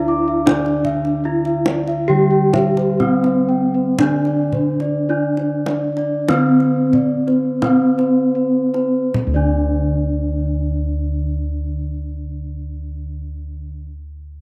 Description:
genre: Javanese gamelan.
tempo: 37-79 BPM.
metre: 4/4.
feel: straight.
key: unclear.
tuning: A4 = 440 Hz.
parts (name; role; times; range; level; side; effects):
gamelan-type bronze metallophone; melody; 0.0-13.9 s; C4-40c to G4-20c; -21 LUFS; equal; none.
gamelan-type bronze metallophone; accompaniment; 0.0-13.9 s; D3 to D4; -26 LUFS; equal; none.
gamelan-type bronze metallophone; arpeggios; 0.0-13.9 s; C5-40c to D6; -26 LUFS; equal; none.
gamelan-type bossed gongs; bass; 0.0-13.8 s; D2 to E4+40c; -26 LUFS; equal; none.
kendang; percussion; 0.5-9.9 s; none; -27 LUFS; equal; none.
room: moderate plate reverb, RT60 3.4 s.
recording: none.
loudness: -18 LUFS.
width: mono.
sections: 0.0-9.2 A section; 9.2-14.4 B section.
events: slowing down 0.5-9.2.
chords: none.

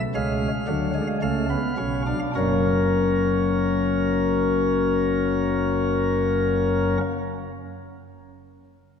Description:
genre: classical, baroque-style 3-part fugue for pipe organ.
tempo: 52 BPM.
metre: 4/4.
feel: straight.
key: unclear.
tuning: A4 = 442 Hz.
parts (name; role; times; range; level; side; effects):
chamber organ, sparkling flutes; solo; 0.1-7.0 s; F#1 to E#5; -21 LUFS; left 2 dB; none.
room: wet church reverb, RT60 3.0 s.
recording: none.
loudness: -20 LUFS.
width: side -7 dB against mid.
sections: 0.0-2.4 A section; 2.4-7.0 B section.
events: slowing down 0.0-2.4.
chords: 0.1 C#7; 2.4 F#.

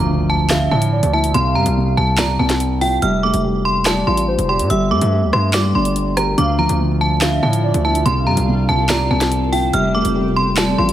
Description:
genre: hip hop, drill.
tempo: 143 BPM.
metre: 4/4.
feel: half-time.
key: D minor.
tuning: A4 = 436 Hz.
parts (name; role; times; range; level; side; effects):
metallic FM bell; melody; 0.0-10.9 s; F5 to F6; -20 LUFS; right 1 dB; chorus, low-pass filter.
warm velvety synth lead; second line; 0.0-10.9 s; Bb4 to F5; -26 LUFS; right 2 dB; chorus, digital delay.
felt-muted upright piano; accompaniment; 0.0-10.9 s; C3 to G4; -19 LUFS; left 1 dB; low-pass filter.
distorted 808-style bass; bass; 0.0-10.9 s; F1 to A2; -20 LUFS; equal; distortion.
impact; sound effects; 0.0-1.3 s; none; -29 LUFS; right 1 dB; none.
drill drum kit; drums; 0.5-10.9 s; handclaps, hi-hat, rim click, snare drum; -21 LUFS; equal; none.
granular cloud pad; sustained chords; 6.9-10.9 s; C3 to D5; -26 LUFS; equal; built-in reverb.
room: little or no reverb.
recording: vinyl crackle.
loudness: -14 LUFS.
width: side -12 dB against mid.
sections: 0.0-10.9 A section.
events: impact 0.0-1.3.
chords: 0.0 Dmadd9; 1.3 Csus4; 3.0 Fadd9; 4.7 Gsus2; 6.4 Dmadd9; 8.1 C7sus4; 9.7 Fadd9.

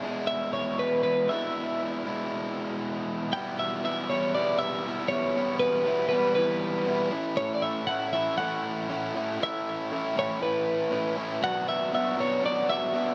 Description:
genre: rock.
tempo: 119 BPM.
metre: 4/4.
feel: straight.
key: unclear.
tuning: A4 = 440 Hz.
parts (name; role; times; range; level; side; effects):
twelve-string electric guitar; melody; 0.0-13.1 s; G#4 to G5; -30 LUFS; equal; dub echo.
overdriven electric guitar; riff; 0.0-13.1 s; E2 to F#4; -32 LUFS; equal; none.
room: light reverb, digital ambience.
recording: echo-heavy mix.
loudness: -28 LUFS.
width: mono.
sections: 0.0-3.3 A section; 3.3-13.1 B section.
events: none.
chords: 0.0 E7; 3.3 Em; 7.1 A; 11.4 Bm.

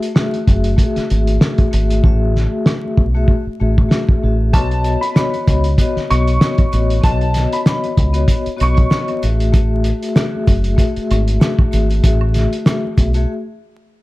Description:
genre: hip hop, boom-bap hip-hop.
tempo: 96 BPM.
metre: 4/4.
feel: swing 56% on 16ths.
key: unclear.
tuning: A4 = 440 Hz.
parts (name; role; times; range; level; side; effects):
vibraphone with medium mallets; accompaniment; 0.0-13.3 s; A3 to E5; -21 LUFS; left 3 dB; none.
cloth-damped thuddy drum kit; drums; 0.0-13.3 s; hi-hat, kick drum, rim click, snare drum; -15 LUFS; equal; none.
deep dub fingered electric bass; bass; 0.5-13.2 s; F#1 to C#2; -16 LUFS; equal; none.
warm upright piano; melody; 4.5-9.1 s; A5 to C#6; -22 LUFS; equal; slapback echo.
egg shaker and woodblock; percussion; 4.5-13.1 s; none; -36 LUFS; right 13 dB; none.
room: small room ambience.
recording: dark, warm production, vinyl crackle.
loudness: -13 LUFS.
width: side -19 dB against mid.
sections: 0.0-14.0 A section.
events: hi-hats muted 2.0-4.5; break 13.3-14.0.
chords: 0.0 F#m7; 4.5 Badd9; 9.2 F#m7.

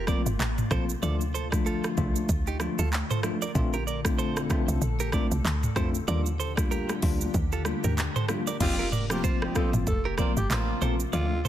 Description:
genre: afrobeats.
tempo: 95 BPM.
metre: 4/4.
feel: swing 58% on 16ths.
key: F mixolydian.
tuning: A4 = 440 Hz.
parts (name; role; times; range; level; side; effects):
glassy FM pad; sustained chords; 0.0-11.5 s; Bb2 to A4; -37 LUFS; left 4 dB; ensemble chorus, built-in reverb.
direct-recorded clean electric guitar; riff; 0.0-11.5 s; Eb4 to D5; -35 LUFS; right 7 dB; digital delay.
woody log drum bass; bass; 0.0-11.5 s; F1 to F2; -29 LUFS; equal; none.
bell-like tine electric piano; accompaniment; 0.1-11.3 s; F3 to F4; -32 LUFS; left 4 dB; fast stereo tremolo.
afro-pop drum kit; drums; 0.1-11.5 s; crash cymbal, handclaps, hi-hat, kick drum, rim click, shaker, toms; -28 LUFS; equal; none.
congas; percussion; 0.1-11.4 s; none; -38 LUFS; right 4 dB; none.
breathy alto saxophone; melody; 8.6-11.4 s; F4 to A4; -34 LUFS; right 1 dB; digital delay.
dark horn section; second line; 8.6-11.0 s; F3 to G4; -37 LUFS; right 3 dB; none.
room: little or no reverb.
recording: dense, heavily limited modern master.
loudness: -24 LUFS.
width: side -12 dB against mid.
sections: 0.0-8.6 A section; 8.6-11.5 B section.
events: none.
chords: 0.0 Fsus4; 1.0 Dm; 3.6 Bbmaj7; 6.1 Ebmaj7; 8.6 Fsus4.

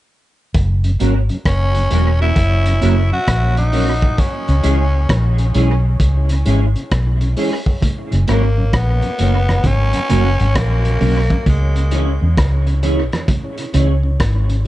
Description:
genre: roots reggae.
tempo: 66 BPM.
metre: 4/4.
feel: swing 65% on 16ths.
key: unclear.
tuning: A4 = 437 Hz.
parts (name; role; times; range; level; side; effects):
vintage muted fingered electric bass; bass; 0.5-14.7 s; E1 to E2; -15 LUFS; equal; none.
crunchy breakbeat drum kit; drums; 0.5-14.6 s; hi-hat, kick drum, rim click; -20 LUFS; equal; dub echo.
mellow tonewheel organ; accompaniment; 0.8-14.7 s; F#2 to C#4; -26 LUFS; left 1 dB; slow rotary speaker, tube saturation, dub echo.
semi-hollow electric guitar; accompaniment; 1.0-14.5 s; G#3 to C#5; -24 LUFS; right 2 dB; ensemble chorus, tape echo.
growling tenor saxophone; melody; 1.5-12.3 s; G#3 to F#4; -22 LUFS; equal; tape echo.
congas; percussion; 7.8-14.5 s; none; -24 LUFS; right 3 dB; none.
room: little or no reverb.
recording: echo-heavy mix, nothing above 10.6 kHz.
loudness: -13 LUFS.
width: side -15 dB against mid.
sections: 0.5-7.8 A section; 7.8-14.7 B section.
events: none.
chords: 0.5 F#; 4.2 C#m; 7.8 F#; 11.5 C#m.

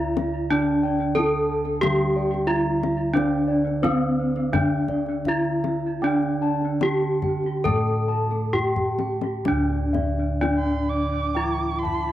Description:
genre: Javanese gamelan.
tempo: 63-91 BPM.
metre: 4/4.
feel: straight.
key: D slendro.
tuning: A4 = 436 Hz.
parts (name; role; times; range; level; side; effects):
gamelan-type bronze metallophone; melody; 0.0-12.1 s; C4-25c to A4; -23 LUFS; equal; cassette tape, analog delay.
gamelan-type bronze metallophone; accompaniment; 0.0-12.1 s; D3 to A3; -32 LUFS; right 6 dB; cassette tape.
gamelan-type bossed gongs; arpeggios; 0.0-12.1 s; C5-25c to A5; -33 LUFS; left 8 dB; cassette tape.
gamelan-type bronze metallophone; arpeggios; 0.0-12.1 s; C5-25c to A5; -34 LUFS; right 5 dB; cassette tape.
gamelan-type bossed gongs; bass; 0.0-12.1 s; D2 to F4-45c; -27 LUFS; equal; none.
kendang; percussion; 0.0-12.1 s; none; -30 LUFS; left 5 dB; none.
dark erhu; second line; 10.6-12.1 s; C6-26c to D6; -29 LUFS; right 6 dB; cassette tape.
room: light reverb, small room ambience.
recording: home recording on cassette.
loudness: -20 LUFS.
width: side -13 dB against mid.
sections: 0.0-9.5 A section; 9.5-12.1 B section.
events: drum fill 8.5-9.5.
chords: none.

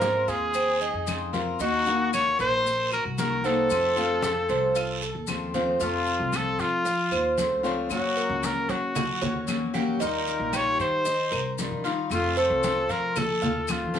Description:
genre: latin, Cuban son and guajira.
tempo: 114 BPM.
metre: 4/4.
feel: straight.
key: unclear.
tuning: A4 = 440 Hz.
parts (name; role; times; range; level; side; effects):
clear trumpet; melody; 0.0-14.0 s; F4 to Db5; -26 LUFS; left 1 dB; none.
picked steel-string acoustic guitar; accompaniment; 0.0-14.0 s; C3 to Gb4; -30 LUFS; left 5 dB; none.
Cuban tres; arpeggios; 0.0-14.0 s; C4 to F5; -29 LUFS; right 3 dB; none.
upright bass; bass; 0.0-14.0 s; Bb1 to Gb3; -35 LUFS; equal; none.
congas; percussion; 0.0-14.0 s; none; -34 LUFS; equal; none.
guiro; percussion; 0.0-14.0 s; none; -37 LUFS; right 7 dB; none.
maracas; percussion; 0.0-14.0 s; none; -39 LUFS; left 8 dB; none.
claves; percussion; 0.6-13.9 s; none; -37 LUFS; left 5 dB; none.
room: moderate studio ambience, RT60 0.5 s.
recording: studio ambience.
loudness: -23 LUFS.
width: side -9 dB against mid.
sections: 0.0-5.8 A section; 5.8-14.0 B section.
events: trumpet solo 5.8-14.0.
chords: 0.0 Ab6; 1.6 Ebm; 3.7 F; 7.9 Gb; 10.0 Ebadd9; 12.1 F.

